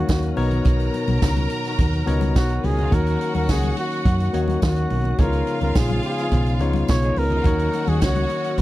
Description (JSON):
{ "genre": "disco", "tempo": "106 BPM", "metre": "4/4", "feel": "straight", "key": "Eb minor", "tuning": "A4 = 440 Hz", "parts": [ { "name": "breathy flugelhorn", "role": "melody", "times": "0.0-8.6 s", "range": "Gb4 to Db5", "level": "-26 LUFS", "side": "equal", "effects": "none" }, { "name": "clear studio string section", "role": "second line", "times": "0.0-8.6 s", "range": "Ab3 to A#5", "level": "-30 LUFS", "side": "equal", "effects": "none" }, { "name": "barky tine electric piano", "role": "accompaniment", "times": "0.0-8.6 s", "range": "B2 to F5", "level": "-26 LUFS", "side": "left 4 dB", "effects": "overdrive" }, { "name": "tonewheel organ", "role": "sustained chords", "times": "0.0-8.6 s", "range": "Db3 to Bb4", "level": "-32 LUFS", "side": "right 2 dB", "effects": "overdrive, chorus vibrato, slow rotary speaker" }, { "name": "hollow-body short-scale fingered electric bass", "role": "bass", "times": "0.0-8.6 s", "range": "Bb1 to Gb2", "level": "-22 LUFS", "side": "right 1 dB", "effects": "none" }, { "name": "vintage drum kit", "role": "drums", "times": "0.1-8.6 s", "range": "hi-hat, kick drum, snare drum", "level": "-21 LUFS", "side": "right 1 dB", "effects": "none" }, { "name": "congas", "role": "percussion", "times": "0.1-8.6 s", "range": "none", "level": "-31 LUFS", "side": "left 5 dB", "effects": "none" }, { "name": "tambourine", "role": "percussion", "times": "0.1-8.2 s", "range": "none", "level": "-39 LUFS", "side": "right 14 dB", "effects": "none" } ], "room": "little or no reverb", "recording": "dry, close 1970s-style studio recording", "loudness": "-18 LUFS", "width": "side -16 dB against mid", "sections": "0.0-8.6 A section", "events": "none", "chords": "0.4 Bmaj7; 5.2 Db7; 7.5 Ebm7", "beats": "0.09 | 0.66 1.22 1.79 2.36 | 2.92 3.49 4.06 4.62 | 5.19 5.76 6.32 6.89 | 7.46 8.02 8.59" }